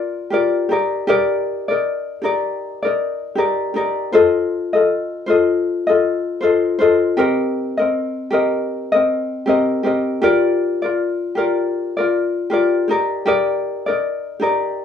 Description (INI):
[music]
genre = pop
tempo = 79 BPM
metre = 4/4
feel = swing 60% on 16ths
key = unclear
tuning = A4 = 440 Hz
[part]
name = ukulele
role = solo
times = 0.0-14.8 s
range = C4 to Eb5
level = -16 LUFS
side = left 2 dB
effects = none
[sound]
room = wet studio ambience, RT60 0.5 s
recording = band playing live in one room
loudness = -16 LUFS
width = side -8 dB against mid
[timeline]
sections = 0.0-14.8 A section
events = none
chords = 0.0 Gm7; 0.7 Ebmaj7; 4.1 F7; 7.2 Cm7; 10.2 Gm7; 12.9 Ebmaj7